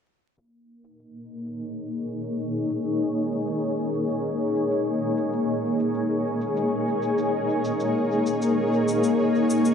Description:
ambient dub; 97 BPM; 4/4; straight; Bb minor; A4 = 440 Hz
granular cloud pad; sustained chords; 1.2-9.7 s; Bb3 to Db5; -22 LUFS; left 1 dB; built-in reverb
cabasa; drums; 0.4-9.7 s; -40 LUFS; left 2 dB; dub echo
moderate echo chamber reverb, RT60 2.4 s; dark, warm production, vinyl crackle, low-pass filter; -22 LUFS; side -7 dB against mid
0.4-9.7 A section
filter sweep on ambient pad 0.4-9.7; filter sweep 0.4-9.7
0.4 Bbm7

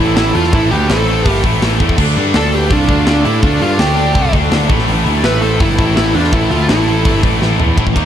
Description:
heavy metal; 166 BPM; 4/4; straight; A minor; A4 = 439 Hz
dark smooth lead guitar; melody; 0.0-7.2 s; D4 to B4; -18 LUFS; right 1 dB; overdrive, ping-pong delay
high-gain lead guitar; second line; 0.0-7.2 s; F4 to E5; -26 LUFS; right 6 dB; distortion, ping-pong delay
clear studio string section; sustained chords; 0.0-8.1 s; A3 to D6; -28 LUFS; equal
scooped high-gain guitar; riff; 0.0-8.1 s; A2 to D#4; -21 LUFS; left 15 dB; distortion
scooped high-gain guitar; riff; 0.0-8.1 s; A2 to D#4; -22 LUFS; right 16 dB; distortion
tight distorted guitar; riff; 0.0-8.1 s; A2 to D#4; -22 LUFS; right 1 dB; distortion
fuzz picked electric bass; bass; 0.0-8.1 s; G1 to A2; -16 LUFS; equal; overdrive
tight metal drum kit; drums; 0.2-8.0 s; crash cymbal, hi-hat, kick drum, ride cymbal, snare drum, toms; -16 LUFS; equal
light reverb; dark, warm production; -10 LUFS; side -10 dB against mid
0.0-7.8 A section
drum fill 7.4-7.8
0.0 Am; 2.0 Dm; 4.7 Am

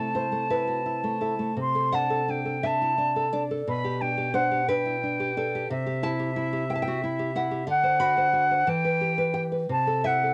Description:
romantic duo for flute and classical guitar; 59 BPM (dotted quarters); 6/8; uneven beats, rubato; G major; A4 = 440 Hz
silver concert flute; melody; 0.0-10.3 s; E5 to C6; -28 LUFS; equal; cassette tape
nylon-string guitar; accompaniment; 0.0-10.3 s; B2 to B5; -30 LUFS; equal
moderate booth ambience, RT60 0.2 s; home recording on cassette; -26 LUFS; mono
0.0-10.3 A section
0.0 Am/C; 1.6 D7/C; 3.7 G/B; 5.7 C; 7.7 D7; 8.7 Em; 9.7 Am/C

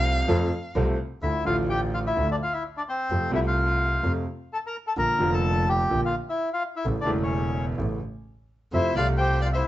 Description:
tango; 128 BPM; 4/4; rubato; D minor; A4 = 440 Hz
warm violin; second line; 0.0-0.8, 8.7-9.7 s; C5 to F5; -29 LUFS; left 1 dB
warm upright piano; accompaniment; 0.0-9.6 s; E1 to A4; -28 LUFS; equal
clear double bass; bass; 0.0-9.6 s; E1 to F2; -26 LUFS; right 1 dB
bandoneon; melody; 1.2-9.7 s; C4 to Bb5; -26 LUFS; left 1 dB; plate reverb
moderate studio reverb, RT60 0.7 s; nothing above 7.9 kHz; -23 LUFS; side -14 dB against mid
0.0-1.2 A section; 1.2-9.7 B section
violin solo 0.0-1.2
0.0 F; 1.2 Dm; 3.1 F; 5.0 Bb; 6.8 A; 8.7 F

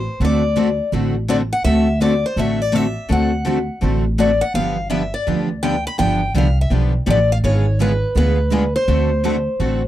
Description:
acoustic string swing (jazz manouche); 166 BPM; 4/4; swing 62% on 8ths; D mixolydian; A4 = 440 Hz
picked steel-string acoustic guitar; melody; 0.0-9.9 s; B4 to B5; -21 LUFS; left 1 dB
upright bass; bass; 0.0-9.9 s; G1 to D2; -19 LUFS; equal
picked steel-string acoustic guitar; accompaniment; 0.2-9.8 s; D3 to A4; -22 LUFS; left 5 dB
picked steel-string acoustic guitar; accompaniment; 0.2-9.8 s; D3 to A4; -24 LUFS; right 9 dB
little or no reverb; dry, close 1970s-style studio recording; -15 LUFS; side -13 dB against mid
0.0-9.9 A section
0.0 D7; 4.5 G7; 7.4 G#dim7; 8.9 D7

